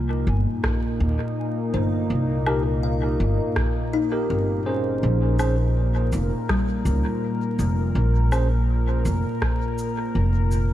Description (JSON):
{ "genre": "ambient dub", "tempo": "82 BPM", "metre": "4/4", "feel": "straight", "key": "unclear", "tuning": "A4 = 439 Hz", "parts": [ { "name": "warbly tape-like pad", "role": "sustained chords", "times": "0.0-10.7 s", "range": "Bb2 to Bb4", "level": "-26 LUFS", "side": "equal", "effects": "chorus, built-in reverb" }, { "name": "kalimba", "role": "arpeggios", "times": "0.0-9.3 s", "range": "G3 to F5", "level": "-31 LUFS", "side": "left 4 dB", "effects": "dub echo" }, { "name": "upright bass", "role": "bass", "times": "0.0-10.7 s", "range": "F1 to Eb2", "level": "-22 LUFS", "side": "equal", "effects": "none" }, { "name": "electronic kick drum", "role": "drums", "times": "0.6-9.6 s", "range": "none", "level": "-26 LUFS", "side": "equal", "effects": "studio reverb" }, { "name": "electronic rim click, woodblock and shaker", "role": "drums", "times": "0.6-10.7 s", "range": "none", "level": "-33 LUFS", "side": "equal", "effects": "studio reverb, dub echo" }, { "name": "bright tine electric piano", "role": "stabs", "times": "2.5-8.5 s", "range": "Db4 to C5", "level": "-30 LUFS", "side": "right 2 dB", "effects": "medium stereo tremolo, dub echo" } ], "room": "light reverb", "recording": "vinyl crackle", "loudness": "-20 LUFS", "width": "side -13 dB against mid", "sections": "0.0-10.7 A section", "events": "none", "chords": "0.0 Cm7; 5.0 Bbmadd9" }